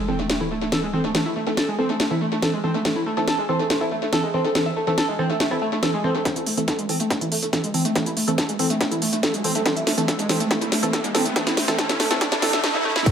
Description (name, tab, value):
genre	driving peak-time techno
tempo	141 BPM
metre	4/4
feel	straight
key	A harmonic minor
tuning	A4 = 440 Hz
part	sub drop, riser and impact	sound effects	0.0-1.1, 8.5-13.1 s	none	-30 LUFS	equal	none
part	overdriven synth lead	riff	0.1-13.1 s	G#3 to A4	-24 LUFS	equal	distortion, lush chorus, vintage 12-bit sampler grit, sidechain pumping, analog delay
part	wavetable chord stab	stabs	0.1-13.1 s	E3 to A4	-26 LUFS	right 2 dB	sidechain pumping, tape echo
part	techno drum kit	drums	0.3-13.1 s	crash cymbal, hi-hat, snare drum	-24 LUFS	equal	sidechain pumping on hats, sidechain pumping on cymbals, tape echo
part	electronic kick drum	drums	6.3-13.1 s	none	-27 LUFS	equal	distortion, overdrive, high-pass filter on kick
part	electronic hi-hat	drums	13.1 s	none	barely audible	none	none
room	moderate echo chamber reverb, RT60 1.8 s, digital ambience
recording	echo-heavy mix, high-pass filter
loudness	-20 LUFS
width	side -8 dB against mid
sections	0.0-6.3 A section; 6.3-13.1 B section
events	impact 0.0-1.1; filter sweep on synth stab 0.0-6.3, 6.3-13.1; build-up 6.3-13.1; drum fill 6.3-12.6, 12.6-13.1; filter sweep on analog synth lead 6.3-13.1; riser 8.5-13.1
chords	0.0 Am